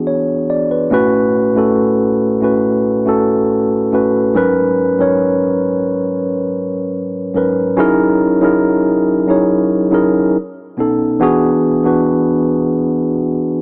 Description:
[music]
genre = R&B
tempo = 70 BPM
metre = 4/4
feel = straight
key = G# phrygian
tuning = A4 = 440 Hz
[part]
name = mellow tine electric piano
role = solo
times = 0.0-13.6 s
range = G#2 to D5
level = -15 LUFS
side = equal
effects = none
[sound]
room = light reverb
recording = small speaker sound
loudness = -15 LUFS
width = mono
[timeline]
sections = 0.0-4.4 A section; 4.4-13.6 A section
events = none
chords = 0.0 E9; 0.9 A6; 4.4 G#m11; 7.8 F#13; 10.4 B9; 11.2 E9

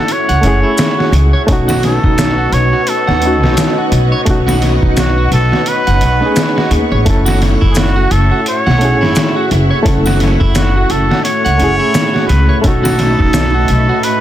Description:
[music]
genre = trip hop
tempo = 86 BPM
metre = 4/4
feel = swing 59% on 16ths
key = F# dorian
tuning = A4 = 440 Hz
[part]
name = trumpet with straight mute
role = melody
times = 0.0-14.2 s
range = F#4 to C#5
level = -18 LUFS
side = equal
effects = tape echo
[part]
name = barky reed electric piano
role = accompaniment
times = 0.0-14.2 s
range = A3 to A4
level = -18 LUFS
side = equal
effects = overdrive, medium tremolo, harmonic tremolo, tape echo
[part]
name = string machine, cellos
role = sustained chords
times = 0.0-14.2 s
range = A3 to C#6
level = -20 LUFS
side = left 1 dB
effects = ensemble chorus
[part]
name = trip hop sampler-style drum kit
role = drums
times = 0.1-14.2 s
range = hi-hat, kick drum, snare drum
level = -16 LUFS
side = equal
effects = none
[part]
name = electric guitar at the edge of break-up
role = arpeggios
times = 0.3-14.0 s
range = D#4 to F#5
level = -20 LUFS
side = right 4 dB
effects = low-pass filter, ping-pong delay
[part]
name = upright bass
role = bass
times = 0.3-13.9 s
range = F#1 to D#2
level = -13 LUFS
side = equal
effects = none
[part]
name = maracas and triangle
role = percussion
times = 0.8-13.5 s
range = none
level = -28 LUFS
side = left 3 dB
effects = none
[sound]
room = small room ambience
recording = dense, heavily limited modern master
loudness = -10 LUFS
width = side -12 dB against mid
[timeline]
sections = 0.0-14.2 A section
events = none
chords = 0.0 F#m7; 1.5 B9; 7.1 F#m7; 12.6 B9

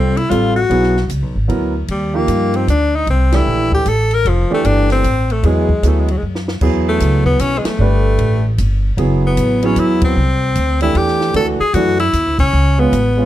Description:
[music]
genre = jazz, small-group swing and bop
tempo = 152 BPM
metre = 3/4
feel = swing 64% on 8ths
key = A major from 6.6 s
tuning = A4 = 439 Hz
[part]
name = bright tenor saxophone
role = melody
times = 0.0-13.3 s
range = F3 to Bb4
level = -17 LUFS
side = left 2 dB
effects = plate reverb
[part]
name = clear concert grand piano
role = accompaniment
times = 0.0-13.3 s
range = E3 to B4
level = -18 LUFS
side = right 2 dB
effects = none
[part]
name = upright bass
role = bass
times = 0.0-13.3 s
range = F1 to G2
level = -16 LUFS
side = equal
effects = none
[part]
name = compact cocktail drum kit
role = drums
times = 0.2-13.0 s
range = crash cymbal, hi-hat, kick drum, ride cymbal, snare drum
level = -23 LUFS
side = equal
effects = none
[sound]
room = light reverb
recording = dark, warm production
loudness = -12 LUFS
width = side -13 dB against mid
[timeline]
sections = 0.0-6.6 A section; 6.6-13.3 B section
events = band accent 3.3, 7.6, 10.0, 12.3; drum fill 6.2-6.6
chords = 0.0 Dm7 (rootless); 0.7 E9; 1.9 Ebmaj7; 3.1 C13; 4.2 Fmaj9; 5.4 E9; 6.6 Amaj9; 7.8 Gadd9; 9.0 F#m7; 10.2 Cadd9; 11.3 Dadd9; 12.5 C#7

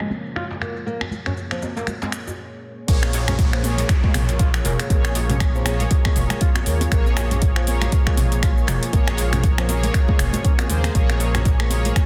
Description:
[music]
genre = afro house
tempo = 119 BPM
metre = 4/4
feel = swing 58% on 16ths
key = Bb minor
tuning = A4 = 440 Hz
[part]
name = warm analog pad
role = sustained chords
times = 0.0-12.1 s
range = Db3 to Bb4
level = -37 LUFS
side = equal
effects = chorus, sidechain pumping
[part]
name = flamenco guitar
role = arpeggios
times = 0.0-11.9 s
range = F3 to F4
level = -34 LUFS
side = equal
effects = sidechain pumping, low-pass filter, tape echo
[part]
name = mellow synth brass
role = stabs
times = 0.0-12.1 s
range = Bb3 to Db5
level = -31 LUFS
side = equal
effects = chorus, sidechain pumping, tape echo
[part]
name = afro-pop drum kit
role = drums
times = 0.0-12.1 s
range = crash cymbal, finger snaps, hi-hat, shaker, toms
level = -29 LUFS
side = equal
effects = soft clipping on snare
[part]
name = djembe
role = percussion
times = 0.0-12.1 s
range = none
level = -35 LUFS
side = equal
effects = none
[part]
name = congas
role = percussion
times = 0.1-11.9 s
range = none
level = -35 LUFS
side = equal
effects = none
[part]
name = smooth gliding synth bass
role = bass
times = 2.9-11.9 s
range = F1 to Eb2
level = -25 LUFS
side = equal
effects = sidechain pumping
[part]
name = electronic kick drum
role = drums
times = 2.9-12.1 s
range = none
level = -21 LUFS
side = equal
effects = none
[part]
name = downlifter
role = sound effects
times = 2.9-6.9 s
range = none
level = -39 LUFS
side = equal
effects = none
[sound]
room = light reverb, digital ambience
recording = dense, heavily limited modern master, low-pass filter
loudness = -20 LUFS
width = mono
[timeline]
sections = 0.0-2.9 A section; 2.9-12.1 B section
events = filter sweep on nylon-string guitar 0.0-2.9; break 2.4-2.9; drop 2.9-12.1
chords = 0.0 Bbm7

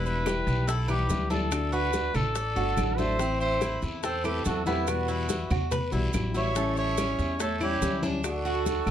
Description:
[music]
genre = latin, Cuban son and guajira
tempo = 143 BPM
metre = 4/4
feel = straight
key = unclear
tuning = A4 = 439 Hz
[part]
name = warm trumpet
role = melody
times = 0.0-8.9 s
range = E4 to C#5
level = -31 LUFS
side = equal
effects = none
[part]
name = nylon-string guitar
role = accompaniment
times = 0.0-8.9 s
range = B2 to F#4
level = -33 LUFS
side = left 4 dB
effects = none
[part]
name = Cuban tres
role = arpeggios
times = 0.0-8.9 s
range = A3 to D5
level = -33 LUFS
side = right 3 dB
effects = none
[part]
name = upright bass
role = bass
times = 0.0-8.9 s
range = E1 to E2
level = -30 LUFS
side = equal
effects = none
[part]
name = congas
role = percussion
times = 0.1-8.9 s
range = none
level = -35 LUFS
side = right 1 dB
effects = none
[part]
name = maracas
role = percussion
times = 0.1-8.9 s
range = none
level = -41 LUFS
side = right 8 dB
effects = none
[part]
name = bongos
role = percussion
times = 0.3-8.9 s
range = none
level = -36 LUFS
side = left 7 dB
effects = none
[part]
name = claves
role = percussion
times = 0.3-8.9 s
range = none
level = -42 LUFS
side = right 4 dB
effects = none
[part]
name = guiro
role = percussion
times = 0.3-8.9 s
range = none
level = -42 LUFS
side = left 2 dB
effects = none
[part]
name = breathy bright concert flute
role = second line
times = 3.0-8.9 s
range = G4 to E5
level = -35 LUFS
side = right 6 dB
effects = none
[sound]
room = moderate studio ambience, RT60 0.5 s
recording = dark, warm production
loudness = -25 LUFS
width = side -10 dB against mid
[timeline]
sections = 0.0-8.9 A section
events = none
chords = 0.0 Em; 1.5 D; 3.2 Am; 4.9 Emadd9; 6.6 A7; 8.2 D

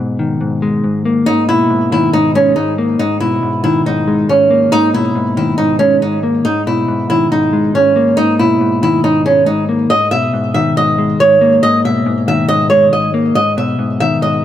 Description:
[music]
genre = hip hop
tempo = 139 BPM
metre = 4/4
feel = half-time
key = G# minor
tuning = A4 = 440 Hz
[part]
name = mellow electric guitar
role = accompaniment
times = 0.0-14.4 s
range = G#2 to A#3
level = -15 LUFS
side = left 2 dB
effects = none
[part]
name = flamenco guitar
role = melody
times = 1.3-14.4 s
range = C#4 to E5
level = -12 LUFS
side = right 2 dB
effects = none
[sound]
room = light reverb, small room ambience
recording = none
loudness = -11 LUFS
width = side -11 dB against mid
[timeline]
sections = 0.0-9.9 A section; 9.9-14.4 B section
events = break 0.0-1.3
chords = 0.0 G#madd9

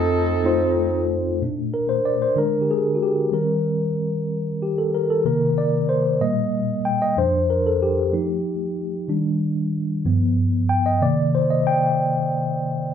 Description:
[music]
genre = gospel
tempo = 62 BPM (dotted quarters)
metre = 6/8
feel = straight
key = unclear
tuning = A4 = 442 Hz
[part]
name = clear horn section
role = melody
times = 0.0-1.1 s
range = C4 to A4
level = -24 LUFS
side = right 3 dB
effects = none
[part]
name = mellow tine electric piano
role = accompaniment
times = 0.0-12.9 s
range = F2 to G5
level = -19 LUFS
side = left 1 dB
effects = medium stereo tremolo
[sound]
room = wet large studio reverb, RT60 0.8 s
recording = band playing live in one room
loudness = -19 LUFS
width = side -8 dB against mid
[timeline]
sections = 0.0-1.4 A section; 1.4-12.9 B section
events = tine electric piano solo 1.4-12.9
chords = 0.0 F7; 1.4 Bbmaj7; 2.4 Bbaug7/D; 3.3 Eb6; 5.2 Cm7; 6.2 Eb/Bb; 7.2 F69; 8.1 F7; 9.1 Ebmaj7; 10.1 G7; 11.0 Cm7

